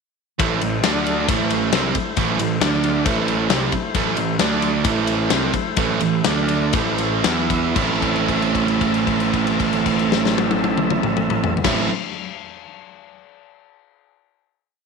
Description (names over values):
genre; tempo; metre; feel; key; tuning
classic rock; 114-135 BPM; 4/4; straight; A minor; A4 = 442 Hz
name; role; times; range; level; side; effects
tonewheel organ; sustained chords; 0.4-11.9 s; A3 to E5; -26 LUFS; left 2 dB; slow rotary speaker, overdrive
overdriven electric guitar; riff; 0.4-11.9 s; A2 to E4; -21 LUFS; right 10 dB; none
fuzz picked electric bass; bass; 0.4-11.9 s; A1 to E2; -25 LUFS; left 2 dB; overdrive
big rock drum kit; drums; 0.4-11.8 s; crash cymbal, kick drum, ride cymbal, snare drum, toms; -22 LUFS; left 8 dB; none
room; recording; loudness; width
moderate echo chamber reverb, RT60 1.9 s, small room ambience; 1960s-style stereo with parts hard left and right; -17 LUFS; side -5 dB against mid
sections
0.4-7.8 riff; 7.8-12.0 final chord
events
slowing down 4.0-7.8; held note 7.8-11.6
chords
0.4 Am; 0.8 D5; 1.3 Am; 2.6 D5; 3.1 Am; 4.4 D5; 4.9 Am; 6.3 D5; 6.7 Am; 7.2 E5; 7.8 Am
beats
| 0.40 0.84 1.28 1.73 | 2.17 2.62 3.06 3.51 | 3.95 4.40 4.85 5.31 | 5.78 6.25 6.74 7.25 | 7.76 8.29 8.82 9.34 | 9.87 10.39 10.92 11.44